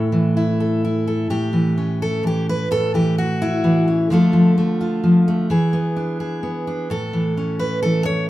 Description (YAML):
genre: folk, solo fingerstyle acoustic guitar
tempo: 128 BPM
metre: 3/4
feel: straight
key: unclear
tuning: A4 = 442 Hz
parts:
  - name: fingerpicked steel-string acoustic guitar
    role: solo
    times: 0.0-8.3 s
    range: A2 to C#5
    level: -17 LUFS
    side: equal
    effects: none
room: moderate studio ambience, RT60 0.5 s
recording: minimal, uncompressed stereo recording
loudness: -17 LUFS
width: side -15 dB against mid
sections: 0.0-1.3 A section; 1.3-8.3 B section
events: none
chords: 0.0 A5; 1.3 A; 4.1 Dm; 5.5 E7; 6.9 A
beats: 0.36 0.83 | 1.30 1.77 2.24 | 2.71 3.17 3.64 | 4.11 4.57 5.04 | 5.50 5.97 6.44 | 6.91 7.38 7.85